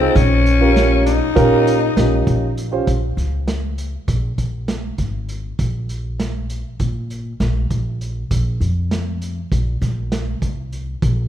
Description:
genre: progressive instrumental, band music in an uneven meter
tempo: 199 BPM (eighths)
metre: 9/8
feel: straight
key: Bb dorian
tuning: A4 = 441 Hz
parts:
  - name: raspy alto saxophone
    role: second line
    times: 0.0-2.5 s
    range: C4 to Eb4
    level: -18 LUFS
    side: left 5 dB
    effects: none
  - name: dark concert grand piano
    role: accompaniment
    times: 0.0-2.9 s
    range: Db4 to C5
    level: -18 LUFS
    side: right 3 dB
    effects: none
  - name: upright bass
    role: bass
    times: 0.0-11.3 s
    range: Ab1 to Bb2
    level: -20 LUFS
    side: equal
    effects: none
  - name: vintage drum kit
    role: drums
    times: 0.2-11.2 s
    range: hi-hat, kick drum, snare drum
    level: -24 LUFS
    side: right 1 dB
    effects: none
room: moderate scoring stage reverb, RT60 2.1 s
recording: recorded in a church or concert hall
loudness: -17 LUFS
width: side -10 dB against mid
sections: 0.0-2.9 A section; 2.9-11.3 B section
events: none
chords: 0.2 Eb7/Bb; 2.9 Bbm7; 5.6 N.C.; 8.3 Bbsus2

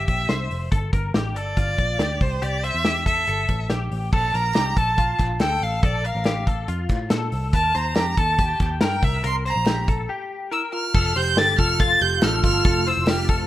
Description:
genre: jangly indie pop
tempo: 141 BPM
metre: 4/4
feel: straight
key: F major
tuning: A4 = 440 Hz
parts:
  - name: rich violin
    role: melody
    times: 0.0-13.5 s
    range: C5 to A6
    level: -23 LUFS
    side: right 1 dB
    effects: slapback echo
  - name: direct-recorded clean electric guitar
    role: arpeggios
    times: 0.0-13.5 s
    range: F4 to C5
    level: -30 LUFS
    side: left 4 dB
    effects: ensemble chorus
  - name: vintage muted picked electric bass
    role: bass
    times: 0.0-13.5 s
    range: F1 to Bb2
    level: -26 LUFS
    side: equal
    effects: none
  - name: modern studio drum kit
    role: drums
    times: 0.1-13.4 s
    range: crash cymbal, hi-hat, kick drum, snare drum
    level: -23 LUFS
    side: equal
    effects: none
  - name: group handclap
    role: percussion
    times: 4.5-13.2 s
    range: none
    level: -40 LUFS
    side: right 2 dB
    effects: none
  - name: tine electric piano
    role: second line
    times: 10.5-13.5 s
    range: E4 to A4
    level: -28 LUFS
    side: right 4 dB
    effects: lush chorus
  - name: phased string machine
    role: sustained chords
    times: 11.3-13.5 s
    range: C3 to A4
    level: -34 LUFS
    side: right 1 dB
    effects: ensemble chorus, phaser
room: small room ambience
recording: rough home demo mix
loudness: -19 LUFS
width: side -14 dB against mid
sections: 0.0-4.1 A section; 4.1-10.9 B section; 10.9-13.5 C section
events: break 10.1-10.9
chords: 0.0 F5; 0.7 Gmadd9; 2.2 C; 4.1 Bbmaj7(no3); 7.5 Eb6; 9.0 C5; 10.9 F

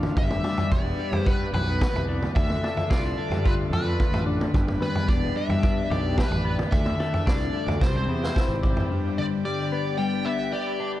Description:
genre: psychedelic rock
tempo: 110 BPM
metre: 4/4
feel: straight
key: unclear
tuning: A4 = 440 Hz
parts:
  - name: combo organ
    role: sustained chords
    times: 0.0-11.0 s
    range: G3 to B4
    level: -37 LUFS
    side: right 7 dB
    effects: none
  - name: twelve-string electric guitar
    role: riff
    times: 0.0-11.0 s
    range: G2 to B4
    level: -29 LUFS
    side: left 4 dB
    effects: phaser, dub echo
  - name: fuzz fingered electric bass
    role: bass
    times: 0.0-8.8 s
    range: E1 to G2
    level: -29 LUFS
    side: equal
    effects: overdrive
  - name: vintage drum kit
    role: drums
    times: 0.0-8.9 s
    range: kick drum, snare drum, toms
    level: -24 LUFS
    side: equal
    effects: none
  - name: dark smooth lead guitar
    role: melody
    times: 0.2-10.9 s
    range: B4 to G5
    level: -30 LUFS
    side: left 1 dB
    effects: wah, overdrive, dub echo
room: studio reverb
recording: echo-heavy mix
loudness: -22 LUFS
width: side -14 dB against mid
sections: 0.0-8.9 A section; 8.9-11.0 B section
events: drum fill 7.8-8.9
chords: 0.2 G; 2.4 Dm; 4.5 G; 6.7 Dm; 7.8 C; 8.9 G

